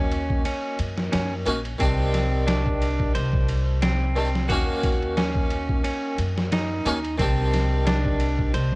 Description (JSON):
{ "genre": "trip hop", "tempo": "89 BPM", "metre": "4/4", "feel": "swing 55% on 16ths", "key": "unclear", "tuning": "A4 = 440 Hz", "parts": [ { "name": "harpsichord", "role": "accompaniment", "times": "0.0-8.8 s", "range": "Eb3 to G4", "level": "-28 LUFS", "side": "equal", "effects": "tremolo, tape echo" }, { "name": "clean electric guitar", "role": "arpeggios", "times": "0.0-8.8 s", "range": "C4 to C5", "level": "-28 LUFS", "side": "right 1 dB", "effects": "vintage 12-bit sampler grit, tape echo" }, { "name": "upright bass", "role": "bass", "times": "0.0-8.8 s", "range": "Bb1 to Gb2", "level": "-25 LUFS", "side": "equal", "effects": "tube saturation" }, { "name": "trip hop sampler-style drum kit", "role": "drums", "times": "0.1-8.8 s", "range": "kick drum, ride cymbal, snare drum", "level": "-26 LUFS", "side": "equal", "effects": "none" } ], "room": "digital ambience", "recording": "worn, warbling old tape, cassette tape, warbly pitch drift", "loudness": "-21 LUFS", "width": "side -26 dB against mid", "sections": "0.0-8.8 A section", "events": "none", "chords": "0.0 Ebm7; 1.8 Cmadd9; 4.5 Ebm7; 7.2 Cmadd9" }